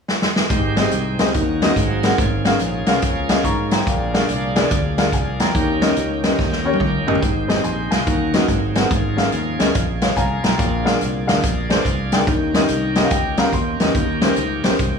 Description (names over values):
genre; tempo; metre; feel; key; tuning
uptempo gospel; 143 BPM; 4/4; swing 65% on 8ths; Ab major; A4 = 440 Hz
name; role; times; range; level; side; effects
swinging big-band drum kit; drums; 0.1-14.9 s; hi-hat, kick drum, snare drum, toms; -19 LUFS; equal; none
warm upright piano; accompaniment; 0.5-14.7 s; Ab2 to Db6; -21 LUFS; left 3 dB; none
bright tonewheel organ; sustained chords; 0.5-15.0 s; Eb3 to Ab4; -26 LUFS; right 5 dB; slow rotary speaker, overdrive
mellow French horn section; sustained chords; 0.5-7.2 s; Ab3 to D5; -32 LUFS; right 1 dB; none
fingered electric bass; bass; 0.5-15.0 s; Ab1 to Ab2; -25 LUFS; right 1 dB; none
room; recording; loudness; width
light reverb; studio reverb; -16 LUFS; side -6 dB against mid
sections
0.5-7.2 A section; 7.2-15.0 B section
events
drum fill 0.1-0.5, 6.4-7.2; upright piano fill 3.0-3.9, 9.7-10.6, 12.7-14.0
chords
0.0 N.C.; 0.5 Abmaj7; 1.3 Ebm7; 1.8 Ab9; 2.2 Db6/Ab; 3.9 Bb7; 5.5 Eb7; 7.2 Abmaj7; 8.1 Ebm7; 8.5 Ab9; 8.9 Db6/Ab; 10.6 Bb7; 12.3 Eb7